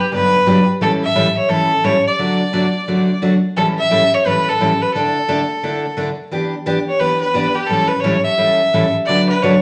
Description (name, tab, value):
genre	country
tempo	174 BPM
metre	4/4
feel	swing 63% on 8ths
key	D major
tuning	A4 = 440 Hz
part	rich fiddle	melody	0.0-9.6 s	G4 to E5	-18 LUFS	equal	none
part	picked steel-string acoustic guitar	accompaniment	0.1-9.5 s	G2 to B4	-20 LUFS	equal	none
room	wet large studio reverb, RT60 0.8 s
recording	none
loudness	-16 LUFS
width	mono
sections	0.0-9.6 A section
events	none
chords	0.0 Gmaj7; 0.8 A7; 2.2 D; 3.6 A7; 4.9 Dsus2; 6.3 Em7; 7.7 A7; 9.1 D6